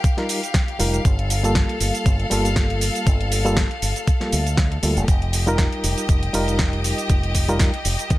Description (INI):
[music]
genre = nu-disco, nu disco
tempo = 119 BPM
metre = 4/4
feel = swing 55% on 16ths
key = G minor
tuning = A4 = 440 Hz
[part]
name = bright studio string section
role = sustained chords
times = 0.0-8.2 s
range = G4 to F5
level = -28 LUFS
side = left 2 dB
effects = sidechain pumping
[part]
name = electronic kick drum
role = drums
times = 0.0-8.2 s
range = none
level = -19 LUFS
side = equal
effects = none
[part]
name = house drum kit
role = drums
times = 0.0-8.2 s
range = hi-hat, shaker, snare drum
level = -26 LUFS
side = right 1 dB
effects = none
[part]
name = reed electric piano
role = accompaniment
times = 0.2-7.7 s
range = G3 to Bb4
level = -25 LUFS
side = equal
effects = fast tremolo, sidechain pumping, tape echo
[part]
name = fingered electric bass with an envelope filter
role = bass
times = 0.8-8.2 s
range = F1 to Eb2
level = -22 LUFS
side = equal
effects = none
[part]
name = reverse cymbal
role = sound effects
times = 8.2 s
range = none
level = -47 LUFS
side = left 3 dB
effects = none
[sound]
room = digital ambience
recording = none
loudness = -18 LUFS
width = side -16 dB against mid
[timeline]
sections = 0.0-8.2 A section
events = none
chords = 0.0 F9sus4; 1.1 Gm9; 5.1 F9sus4